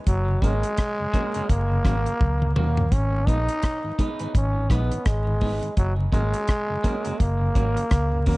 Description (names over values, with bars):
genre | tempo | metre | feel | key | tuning
roots reggae | 84 BPM | 4/4 | swing 59% on 16ths | unclear | A4 = 442 Hz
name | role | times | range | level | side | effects
growling trombone | melody | 0.1-8.4 s | F#3 to D#4 | -27 LUFS | equal | tape echo
vintage muted fingered electric bass | bass | 0.1-8.4 s | F#1 to D#2 | -23 LUFS | equal | none
deep reggae drum kit | drums | 0.1-8.4 s | hi-hat, kick drum, rim click, toms | -23 LUFS | equal | none
mellow tonewheel organ | accompaniment | 0.3-8.4 s | F#2 to D#4 | -32 LUFS | equal | chorus vibrato
electric guitar at the edge of break-up | accompaniment | 0.4-8.4 s | A#3 to B4 | -34 LUFS | right 3 dB | tape echo
room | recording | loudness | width
little or no reverb | echo-heavy mix, vinyl crackle, nothing above 10.4 kHz | -20 LUFS | side -21 dB against mid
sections
0.0-8.4 A section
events
drum fill 2.2-2.9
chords
0.1 F#; 2.9 G#m; 5.8 F#